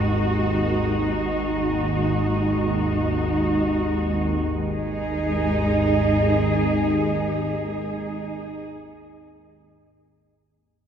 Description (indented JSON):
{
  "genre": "dark ambient drone",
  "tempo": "free time",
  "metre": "none",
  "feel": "none",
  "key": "unclear",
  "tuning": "A4 = 438 Hz",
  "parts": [
    { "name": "dark studio cello section", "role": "sustained chords", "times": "0.0-8.6 s", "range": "G#3 to G#4", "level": "-23 LUFS", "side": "right 1 dB", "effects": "none" },
    { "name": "organ-like drone", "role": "drone", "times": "0.0-8.4 s", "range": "G#1 to D#2", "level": "-24 LUFS", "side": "equal", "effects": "ensemble chorus, built-in reverb" }
  ],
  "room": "wet lush hall reverb, RT60 2.9 s",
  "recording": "dreamy mix soaked in reverb",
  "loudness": "-20 LUFS",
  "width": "side -8 dB against mid",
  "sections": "0.0-4.5 A section; 4.5-8.1 B section",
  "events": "none",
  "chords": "0.0 G#5"
}